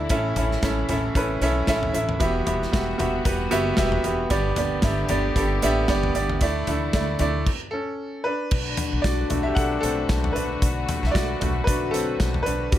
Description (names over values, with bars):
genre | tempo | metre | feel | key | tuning
piano-driven pop | 114 BPM | 4/4 | swing 56% on 16ths | unclear | A4 = 440 Hz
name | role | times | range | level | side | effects
bright upright piano | accompaniment | 0.0-12.8 s | G2 to F#5 | -24 LUFS | right 1 dB | plate reverb
warm studio string section | sustained chords | 0.0-12.8 s | C#3 to B4 | -34 LUFS | left 4 dB | plate reverb
upright bass | bass | 0.0-12.8 s | E1 to E2 | -27 LUFS | equal | none
modern studio drum kit | drums | 0.1-12.8 s | crash cymbal, hi-hat, kick drum, snare drum, toms | -26 LUFS | equal | none
clear French horn section | second line | 8.5-12.8 s | D3 to F#4 | -30 LUFS | left 7 dB | plate reverb
room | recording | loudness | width
light reverb | none | -21 LUFS | side -12 dB against mid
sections
0.0-8.5 A section; 8.5-12.8 B section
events
stop 7.5-8.5; upright piano solo 8.5-12.8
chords
0.1 A; 2.2 Emadd9; 4.3 G; 6.4 Dsus2; 8.5 Bm7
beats
| 0.10 0.63 1.16 1.68 | 2.21 2.73 3.26 3.79 | 4.31 4.84 5.36 5.89 | 6.42 6.94 7.47 7.99 | 8.52 9.05 9.57 10.10 | 10.62 11.15 11.68 12.20 | 12.73